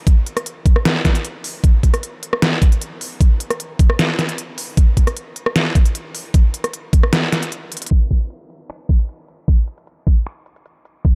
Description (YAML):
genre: future bass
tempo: 153 BPM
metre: 4/4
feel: half-time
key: none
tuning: none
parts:
  - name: dubstep drum kit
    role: drums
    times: 0.1-11.1 s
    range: crash cymbal, finger snaps, hi-hat, rim click, snare drum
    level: -22 LUFS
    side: equal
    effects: none
  - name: electronic kick drum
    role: drums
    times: 0.1-11.1 s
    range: none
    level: -15 LUFS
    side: equal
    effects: overdrive
room: little or no reverb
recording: dark, warm production, low-pass filter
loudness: -18 LUFS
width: mono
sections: 0.0-7.9 A section; 7.9-11.2 B section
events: drop 0.0-7.9; drum fill 7.7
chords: none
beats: | 0.07 0.46 0.85 1.25 | 1.64 2.03 2.42 2.81 | 3.21 3.60 3.99 4.38 | 4.77 5.17 5.56 5.95 | 6.34 6.74 7.13 7.52 | 7.91 8.30 8.70 9.09 | 9.48 9.87 10.27 10.66 | 11.05